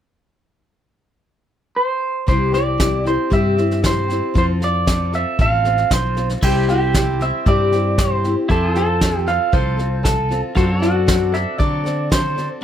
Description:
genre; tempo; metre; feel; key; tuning
honky-tonk and classic country; 116 BPM; 4/4; straight; C major; A4 = 440 Hz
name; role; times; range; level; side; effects
electric guitar through a small old amp; melody; 1.8-12.5 s; F#4 to F5; -20 LUFS; right 2 dB; none
picked steel-string acoustic guitar; accompaniment; 2.3-12.6 s; C3 to A4; -23 LUFS; left 3 dB; none
mellow fretless electric bass; bass; 2.3-12.5 s; A1 to D3; -21 LUFS; equal; none
soft brush drum kit; drums; 2.3-12.4 s; crash cymbal, hi-hat, kick drum, snare drum; -20 LUFS; equal; none
pedal steel guitar; sustained chords; 6.4-12.6 s; E4 to D5; -28 LUFS; left 1 dB; none
room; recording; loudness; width
little or no reverb; close, detailed microphones; -15 LUFS; side -10 dB against mid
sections
0.2-2.3 A section; 2.3-6.4 B section; 6.4-12.6 C section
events
none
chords
0.2 N.C.; 2.3 C; 4.4 F; 6.4 C; 8.5 F; 10.6 D7/F#

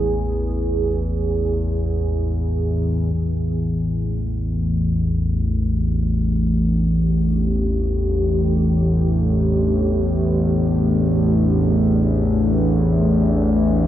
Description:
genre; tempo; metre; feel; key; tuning
dark ambient drone; free time; none; none; unclear; A4 = 437 Hz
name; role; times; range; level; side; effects
deep dark ambient pad; sustained chords; 0.0-13.9 s; A3 to G#4; -23 LUFS; equal; chorus, built-in reverb
analog drone; drone; 0.0-13.9 s; A1 to E2; -18 LUFS; equal; chorus
room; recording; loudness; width
wet cathedral reverb, RT60 5.1 s; dark, warm production; -17 LUFS; side -12 dB against mid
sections
0.0-3.1 A section; 3.1-13.9 B section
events
none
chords
0.0 E; 3.1 A5

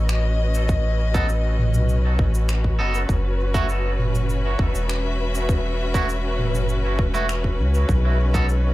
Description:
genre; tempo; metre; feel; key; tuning
ambient dub; 100 BPM; 4/4; straight; F# dorian; A4 = 441 Hz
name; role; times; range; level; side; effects
bright studio string section; sustained chords; 0.0-8.7 s; G#3 to E5; -27 LUFS; left 2 dB; none
soft dub sub bass; bass; 0.0-8.7 s; E1 to C#2; -21 LUFS; equal; none
organic electronic drum kit; drums; 0.1-8.6 s; finger snaps, shaker, toms; -28 LUFS; right 2 dB; overdrive
electronic kick drum; drums; 0.7-8.5 s; none; -23 LUFS; equal; overdrive
twangy electric guitar; stabs; 1.1-8.5 s; A3 to A4; -29 LUFS; right 2 dB; dub echo
room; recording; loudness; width
light reverb, digital ambience; none; -19 LUFS; side -17 dB against mid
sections
0.0-8.7 A section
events
none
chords
0.0 B7; 3.1 F#7(no3); 7.9 B7

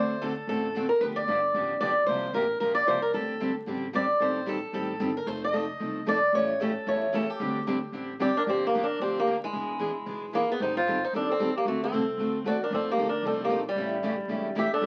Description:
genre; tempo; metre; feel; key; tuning
acoustic string swing (jazz manouche); 226 BPM; 4/4; swing 57% on 8ths; G minor; A4 = 440 Hz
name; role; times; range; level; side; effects
picked swing-style acoustic guitar; melody; 0.0-14.9 s; G3 to Eb5; -30 LUFS; equal; none
picked steel-string acoustic guitar; accompaniment; 0.0-14.9 s; C3 to A4; -34 LUFS; equal; none
picked steel-string acoustic guitar; accompaniment; 0.0-8.3, 12.7-14.9 s; C3 to A4; -41 LUFS; equal; none
upright bass; bass; 0.0-14.9 s; E1 to F2; -42 LUFS; equal; none
mellow clarinet; second line; 8.2-14.9 s; E4 to E5; -33 LUFS; equal; none
room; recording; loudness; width
moderate studio reverb, RT60 0.5 s; very old 78 rpm record, vinyl crackle; -28 LUFS; mono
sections
0.0-8.5 A section; 8.5-14.9 B section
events
none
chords
0.0 D7; 1.0 G7; 2.1 C7sus4; 3.1 D7sus4; 4.2 Am7b5; 5.3 F7; 6.3 A7; 7.4 D7sus4; 8.5 Gm7; 9.5 E7; 10.6 Am7b5; 11.7 D7; 12.7 F7; 13.8 A7

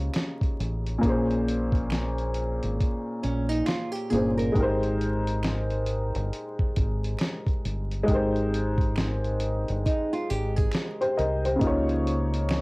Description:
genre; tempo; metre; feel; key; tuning
lo-fi hip hop; 68 BPM; 4/4; swing 61% on 16ths; Ab major; A4 = 441 Hz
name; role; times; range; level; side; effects
warm upright piano; accompaniment; 0.0-12.6 s; Bb2 to Eb5; -27 LUFS; left 1 dB; cassette tape, plate reverb
deep dub fingered electric bass; bass; 0.0-12.6 s; G1 to Db2; -28 LUFS; equal; tube saturation
dusty soul sampler-style drum kit; drums; 0.1-12.6 s; hi-hat, kick drum, snare drum; -28 LUFS; equal; cassette tape
finger snaps; percussion; 0.1-12.6 s; none; -41 LUFS; right 3 dB; none
nylon-string guitar; second line; 3.2-11.6 s; Db4 to Bb4; -31 LUFS; right 2 dB; cassette tape
room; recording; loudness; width
light reverb; home recording on cassette, vinyl crackle; -24 LUFS; side -25 dB against mid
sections
0.0-12.6 A section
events
none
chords
0.0 Db69; 1.0 Bbm7; 4.6 Abmaj7; 11.6 Db69

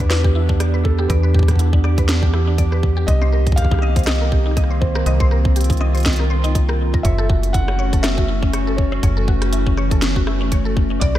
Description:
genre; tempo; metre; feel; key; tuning
IDM; 121 BPM; 4/4; swing 56% on 16ths; unclear; A4 = 440 Hz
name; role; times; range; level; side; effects
felt-muted upright piano; melody; 0.0-11.2 s; A4 to F#5; -28 LUFS; left 1 dB; analog delay
warbly tape-like pad; sustained chords; 0.0-11.2 s; D3 to G4; -24 LUFS; right 1 dB; chorus, built-in reverb
mallet-like synth pluck; arpeggios; 0.0-11.2 s; C#4 to Eb5; -28 LUFS; left 2 dB; ensemble chorus, tape echo
metallic FM bass; bass; 0.0-11.2 s; F#1 to E2; -18 LUFS; equal; none
electronic kick drum; drums; 0.0-11.1 s; none; -18 LUFS; equal; none
organic electronic drum kit; drums; 0.0-11.2 s; hi-hat, rim click, snare drum; -26 LUFS; equal; tape echo
room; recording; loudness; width
light reverb; none; -15 LUFS; side -13 dB against mid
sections
0.0-11.2 A section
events
none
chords
0.0 Em7; 3.1 Cm7; 7.0 F#m7

